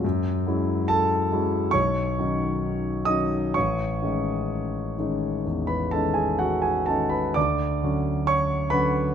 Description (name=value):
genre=classical, impressionist solo piano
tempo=61-72 BPM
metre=4/4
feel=rubato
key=unclear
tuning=A4 = 440 Hz
part: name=warm concert grand piano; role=solo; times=0.0-9.1 s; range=A1 to D#6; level=-22 LUFS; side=equal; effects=none
room=light reverb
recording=close, detailed microphones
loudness=-22 LUFS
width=side -8 dB against mid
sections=0.0-9.1 A section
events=none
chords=0.0 F#m9; 1.7 Badd9; 3.6 Amaj7#11; 7.4 Dmaj7